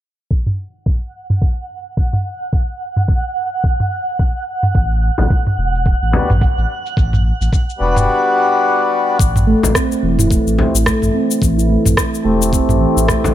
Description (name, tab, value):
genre	organic downtempo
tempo	108 BPM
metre	4/4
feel	swing 57% on 16ths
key	A dorian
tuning	A4 = 440 Hz
part	afro-pop drum kit	drums	0.3-13.3 s	rim click, shaker, toms	-18 LUFS	equal	low-pass filter on perc, low-pass filter on toms, low-pass filter on snare
part	electronic kick drum	drums	0.3-13.2 s	none	-16 LUFS	equal	none
part	twinkling granular texture	texture	1.3-8.1 s	F#5	-24 LUFS	right 3 dB	built-in reverb
part	warm sub bass	bass	4.7-13.3 s	E1 to A1	-17 LUFS	equal	none
part	frame drum	percussion	5.2-6.3, 9.6-13.3 s	none	-20 LUFS	left 1 dB	none
part	hand-pumped harmonium	accompaniment	6.1-13.3 s	G3 to C5	-17 LUFS	left 3 dB	sidechain pumping, low-pass filter, digital delay
part	handpan	arpeggios	9.5-13.2 s	E3 to E4	-16 LUFS	right 2 dB	low-pass filter, digital delay
room	light reverb, small room ambience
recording	low-pass filter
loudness	-13 LUFS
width	side -12 dB against mid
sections	0.3-9.2 A section; 9.2-13.3 B section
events	filter sweep on drum 0.3-9.2; filter sweep 0.3-9.2; filter sweep on handpan 9.2-13.3; filter sweep on harmonium 9.2-13.3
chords	0.3 N.C.; 4.8 Gmaj7; 9.2 Am7